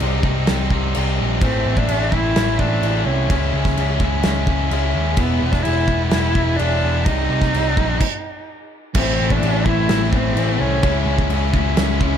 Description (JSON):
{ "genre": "quiet-loud alternative rock", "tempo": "128 BPM", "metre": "4/4", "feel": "straight", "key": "A harmonic minor", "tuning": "A4 = 440 Hz", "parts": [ { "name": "cranked stack guitar", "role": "riff", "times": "0.0-12.2 s", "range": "A2 to E4", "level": "-26 LUFS", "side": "right 14 dB", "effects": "overdrive" }, { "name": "tight distorted guitar", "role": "riff", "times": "0.0-12.2 s", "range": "A2 to E4", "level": "-25 LUFS", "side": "left 12 dB", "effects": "distortion" }, { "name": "overdriven picked electric bass", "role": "bass", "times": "0.0-12.2 s", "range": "E1 to D#2", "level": "-21 LUFS", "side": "equal", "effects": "none" }, { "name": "loose indie drum kit", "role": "drums", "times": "0.0-12.1 s", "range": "crash cymbal, kick drum, snare drum", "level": "-22 LUFS", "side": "equal", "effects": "none" }, { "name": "warm cello", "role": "melody", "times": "1.4-11.1 s", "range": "B3 to E4", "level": "-23 LUFS", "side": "right 1 dB", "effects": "none" }, { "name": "fuzz guitar", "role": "riff", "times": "8.9-12.2 s", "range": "A2 to E4", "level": "-24 LUFS", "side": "left 4 dB", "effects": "distortion" } ], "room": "little or no reverb", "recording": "none", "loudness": "-16 LUFS", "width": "side -8 dB against mid", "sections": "0.0-8.9 A section; 8.9-12.2 A section", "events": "stop 8.0-8.9", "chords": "0.0 Cm; 1.4 Am; 3.3 C#m; 5.2 E; 7.1 Cm; 8.9 Am; 10.8 C#m" }